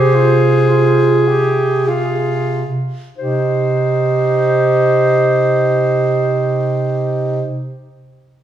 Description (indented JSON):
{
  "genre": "classical, lyrical piece for single-reed quartet",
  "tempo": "free time",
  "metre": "none",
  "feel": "none",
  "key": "C minor",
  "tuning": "A4 = 440 Hz",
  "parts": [
    { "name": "clear clarinet", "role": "melody", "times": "0.0-7.4 s", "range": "C5", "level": "-20 LUFS", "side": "left 6 dB", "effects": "none" },
    { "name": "clear alto saxophone", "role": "second line", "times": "0.0-7.4 s", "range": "F4 to Ab4", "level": "-18 LUFS", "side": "right 5 dB", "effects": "none" },
    { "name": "clear tenor saxophone", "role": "accompaniment", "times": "0.0-7.4 s", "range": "Eb4 to Ab4", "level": "-17 LUFS", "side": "left 1 dB", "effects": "none" },
    { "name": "warm bass clarinet", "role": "bass", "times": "0.0-7.4 s", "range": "C3", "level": "-18 LUFS", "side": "right 3 dB", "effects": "none" }
  ],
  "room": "wet recital hall reverb, RT60 1.5 s",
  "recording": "heard from further back in the room",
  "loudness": "-12 LUFS",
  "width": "side -10 dB against mid",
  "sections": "0.0-3.2 A section; 3.2-8.0 B section",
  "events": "slowing down 0.0-3.2",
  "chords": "0.0 Fm/C; 3.2 Cm"
}